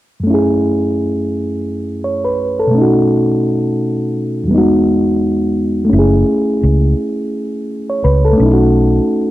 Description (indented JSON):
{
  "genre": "lo-fi hip hop",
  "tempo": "85 BPM",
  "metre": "4/4",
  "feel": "swing 58% on 16ths",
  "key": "F# dorian",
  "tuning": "A4 = 440 Hz",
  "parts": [
    { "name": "mellow reed electric piano", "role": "accompaniment", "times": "0.2-9.3 s", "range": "E2 to C#5", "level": "-13 LUFS", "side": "equal", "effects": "cassette tape" },
    { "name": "vintage muted fingered electric bass", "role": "bass", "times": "5.9-9.0 s", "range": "F#1 to C#2", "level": "-12 LUFS", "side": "equal", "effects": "none" }
  ],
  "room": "moderate spring reverb, RT60 1.7 s",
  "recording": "dark, warm production",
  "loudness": "-12 LUFS",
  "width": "side -15 dB against mid",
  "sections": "0.3-5.9 A section; 5.9-9.3 B section",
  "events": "none",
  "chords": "0.3 F#m7; 2.7 B7; 4.5 Emaj7; 5.9 F#m7 (rootless); 8.4 B7"
}